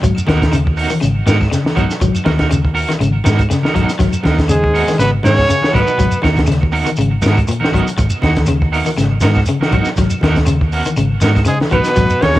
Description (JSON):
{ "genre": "afrobeat", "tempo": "120 BPM", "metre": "4/4", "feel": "swing 54% on 16ths", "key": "G# minor", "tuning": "A4 = 440 Hz", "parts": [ { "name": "electric guitar at the edge of break-up", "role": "arpeggios", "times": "0.0-12.4 s", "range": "A#2 to F#3", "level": "-19 LUFS", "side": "left 4 dB", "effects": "cassette tape" }, { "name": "hollow-body short-scale fingered electric bass", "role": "bass", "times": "0.0-12.4 s", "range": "G#1 to G#2", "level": "-16 LUFS", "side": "equal", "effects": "none" }, { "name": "compact cocktail drum kit", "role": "drums", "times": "0.0-12.4 s", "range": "hi-hat, kick drum, snare drum", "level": "-18 LUFS", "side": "equal", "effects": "none" }, { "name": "congas", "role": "percussion", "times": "0.0-12.4 s", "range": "none", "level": "-25 LUFS", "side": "equal", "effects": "none" }, { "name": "shekere", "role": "percussion", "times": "0.0-12.4 s", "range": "none", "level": "-22 LUFS", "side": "right 1 dB", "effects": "none" }, { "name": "claves", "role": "percussion", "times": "0.1-12.2 s", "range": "none", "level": "-34 LUFS", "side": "left 3 dB", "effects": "none" }, { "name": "electric guitar at the edge of break-up", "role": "stabs", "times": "0.3-12.4 s", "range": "B3 to A#4", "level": "-21 LUFS", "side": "right 4 dB", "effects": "tremolo, cassette tape, tape echo" }, { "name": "bright trumpet", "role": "melody", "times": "4.5-6.2, 11.5-12.4 s", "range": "G#4 to C#5", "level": "-16 LUFS", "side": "equal", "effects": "cassette tape" }, { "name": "clear bass trombone", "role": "second line", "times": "4.5-6.2, 11.4-12.4 s", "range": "G#2 to C#3", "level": "-24 LUFS", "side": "left 3 dB", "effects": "cassette tape" }, { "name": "raspy tenor saxophone", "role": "second line", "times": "4.5-6.2, 11.5-12.4 s", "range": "G#3 to C#4", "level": "-21 LUFS", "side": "right 3 dB", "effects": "cassette tape" } ], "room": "light reverb", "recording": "home recording on cassette", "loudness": "-12 LUFS", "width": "side -15 dB against mid", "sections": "0.0-12.4 A section", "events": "none", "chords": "0.0 G#m9" }